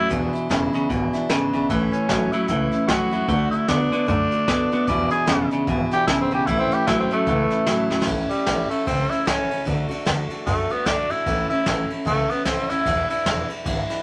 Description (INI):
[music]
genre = rockabilly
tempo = 150 BPM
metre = 4/4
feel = swing 59% on 8ths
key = A major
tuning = A4 = 441 Hz
[part]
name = raspy tenor saxophone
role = melody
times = 0.0-13.5 s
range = G3 to D5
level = -26 LUFS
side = equal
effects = none
[part]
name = picked steel-string acoustic guitar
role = accompaniment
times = 0.0-14.0 s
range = E2 to F#4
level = -30 LUFS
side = equal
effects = none
[part]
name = clean electric guitar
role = riff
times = 0.0-8.1 s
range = E2 to B3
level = -25 LUFS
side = equal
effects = none
[part]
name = upright bass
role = bass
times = 0.0-13.9 s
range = E1 to A2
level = -31 LUFS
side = equal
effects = none
[part]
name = jazz brush drum kit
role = drums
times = 0.1-14.0 s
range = hi-hat, kick drum, ride cymbal, snare drum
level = -29 LUFS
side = equal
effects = none
[sound]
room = light reverb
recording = none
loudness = -22 LUFS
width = mono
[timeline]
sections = 0.0-8.1 A section; 8.1-14.0 B section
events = drum fill 7.9; tenor saxophone solo 8.1-14.0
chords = 0.1 E7; 1.7 A; 3.3 D; 4.9 E7; 6.5 A; 9.7 D; 11.3 A; 12.9 E7